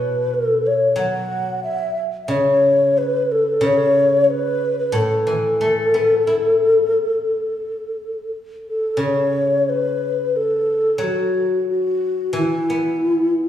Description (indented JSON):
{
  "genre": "chinese traditional, Chinese chamber ensemble",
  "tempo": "90 BPM",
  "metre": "4/4",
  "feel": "straight",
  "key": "A gong mode",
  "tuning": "A4 = 440 Hz",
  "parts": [
    { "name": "mellow hollow xiao", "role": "melody", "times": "0.0-13.5 s", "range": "E4 to F#5", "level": "-17 LUFS", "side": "left 1 dB", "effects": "none" },
    { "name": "guzheng", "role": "accompaniment", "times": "0.0-13.5 s", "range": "A2 to E4", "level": "-25 LUFS", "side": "right 1 dB", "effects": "none" }
  ],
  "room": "wet recital hall reverb, RT60 1.7 s",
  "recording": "heard from further back in the room, small room ambience",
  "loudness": "-16 LUFS",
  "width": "side -10 dB against mid",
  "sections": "0.0-9.0 A section; 9.0-13.5 B section",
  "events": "none",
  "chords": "none"
}